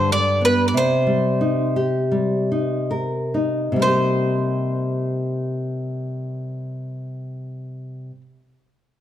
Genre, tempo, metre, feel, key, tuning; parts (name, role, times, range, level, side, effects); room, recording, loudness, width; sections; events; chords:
fado-style ballad; 64-99 BPM; 4/4; rubato; C minor; A4 = 436 Hz
bowl-back mandolin; melody; 0.0-8.2 s; B4 to D5; -22 LUFS; equal
nylon-string guitar; accompaniment; 0.0-8.3 s; G2 to Bb4; -21 LUFS; left 1 dB
moderate scoring stage reverb, RT60 1.6 s; close, detailed microphones; -19 LUFS; side -11 dB against mid
0.0-3.8 A section; 3.8-7.4 B section
slowing down 0.0-3.8
0.0 G; 0.8 Cm7